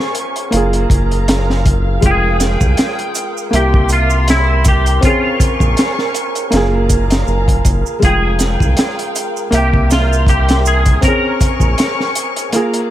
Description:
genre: trip hop.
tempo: 80 BPM.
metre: 4/4.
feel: swing 56% on 16ths.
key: unclear.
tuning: A4 = 438 Hz.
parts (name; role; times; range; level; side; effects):
twangy electric guitar; melody; 0.0-12.9 s; E4 to Bb4; -20 LUFS; equal; ensemble chorus, tape echo.
felt-muted upright piano; accompaniment; 0.0-12.9 s; Ab3 to G5; -19 LUFS; equal; harmonic tremolo, tape echo.
muted studio violin section; sustained chords; 0.0-12.9 s; Bb4 to Db6; -24 LUFS; left 1 dB; none.
crunchy breakbeat drum kit; drums; 0.0-12.9 s; hi-hat, kick drum, snare drum; -15 LUFS; equal; none.
wind-like tuned noise texture; texture; 0.0-12.9 s; Bb4; -26 LUFS; right 5 dB; built-in reverb.
round analog bass; bass; 0.5-11.8 s; F1 to C2; -15 LUFS; equal; none.
maracas; percussion; 2.0-12.7 s; none; -27 LUFS; right 9 dB; none.
room: studio reverb.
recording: none.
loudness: -11 LUFS.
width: side -13 dB against mid.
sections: 0.0-12.9 A section.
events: kick drops out 12.5-12.9.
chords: 0.0 Bbm7; 0.5 Gbmaj7; 2.0 Fmadd9; 3.5 C7; 5.0 Bbm7; 6.5 Gbmaj7; 8.0 Fmadd9; 9.5 C7; 11.0 Bbm7.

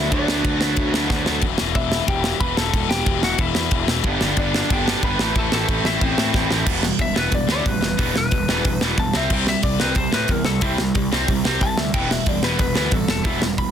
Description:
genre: punk rock.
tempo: 183 BPM.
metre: 4/4.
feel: straight.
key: E minor.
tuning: A4 = 440 Hz.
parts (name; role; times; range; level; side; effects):
lightly driven lead guitar; melody; 0.0-13.7 s; C4 to B5; -25 LUFS; left 2 dB; none.
cranked stack guitar; riff; 0.0-1.4, 4.0-13.7 s; G2 to F#4; -25 LUFS; right 14 dB; overdrive.
tight distorted guitar; riff; 0.0-13.7 s; E2 to C4; -25 LUFS; left 15 dB; distortion.
fuzz picked electric bass; bass; 0.0-13.7 s; E1 to A2; -25 LUFS; equal; overdrive.
tight metal drum kit; drums; 0.1-13.7 s; crash cymbal, hi-hat, kick drum, ride cymbal, snare drum; -22 LUFS; equal; none.
room: little or no reverb.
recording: dense, heavily limited modern master.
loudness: -18 LUFS.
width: side -9 dB against mid.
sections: 0.0-1.4 A section; 1.4-6.7 B section; 6.7-13.7 C section.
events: drum fill 1.1-1.4, 6.3-6.7; lead electric guitar solo 6.7-13.7.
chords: 0.0 Bm/D; 1.4 Em; 4.0 G; 5.2 Am; 6.7 Em; 9.1 C; 11.9 Em.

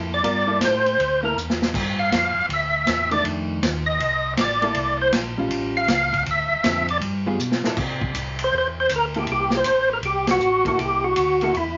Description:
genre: soul jazz organ trio.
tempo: 159 BPM.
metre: 4/4.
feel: swing 65% on 8ths.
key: C mixolydian.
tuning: A4 = 440 Hz.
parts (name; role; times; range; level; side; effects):
hollow-body jazz guitar; accompaniment; 0.0-11.5 s; D3 to Bb4; -30 LUFS; equal; none.
mellow tonewheel organ; bass; 0.0-11.8 s; A1 to C3; -32 LUFS; equal; chorus vibrato, slow rotary speaker.
percussive tonewheel organ; melody; 0.1-11.8 s; E4 to F5; -22 LUFS; equal; slow rotary speaker, overdrive, chorus vibrato.
vintage drum kit; drums; 0.2-11.7 s; crash cymbal, hi-hat, kick drum, ride cymbal, snare drum; -28 LUFS; equal; none.
room: wet club reverb, RT60 0.5 s.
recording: nothing above 7.5 kHz.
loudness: -22 LUFS.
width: mono.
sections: 0.0-7.8 A section; 7.8-11.8 B section.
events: tonewheel organ solo 0.0-7.8; drum fill 1.4-1.7, 7.4-7.8; band accent 10.2.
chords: 0.0 C13; 1.7 G5; 3.2 F6; 4.8 C6; 5.5 A7b13; 6.3 Dm7; 7.0 G7b9; 7.8 C13.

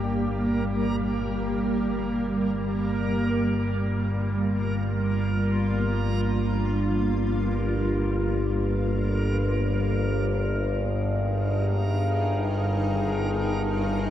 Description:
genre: dark ambient drone.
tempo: free time.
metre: none.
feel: none.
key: G minor.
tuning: A4 = 442 Hz.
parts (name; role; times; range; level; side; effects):
granular cloud pad; sustained chords; 0.0-14.1 s; G2 to Bb4; -28 LUFS; equal; built-in reverb.
warm concert grand piano; arpeggios; 0.0-9.5 s; none; barely audible; none; none.
overtone-sweeping drone; drone; 0.0-14.1 s; G1 to G2; -25 LUFS; equal; chorus, built-in reverb.
backwards swelling texture; texture; 0.0-14.1 s; Bb4; -36 LUFS; right 2 dB; built-in reverb.
room: wet huge ambient reverb, RT60 8.5 s.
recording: dark, warm production.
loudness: -23 LUFS.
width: side -11 dB against mid.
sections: 0.0-14.1 A section.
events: fade-out on synth texture 0.0-14.1.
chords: 0.0 Gm; 9.5 Ab5/G.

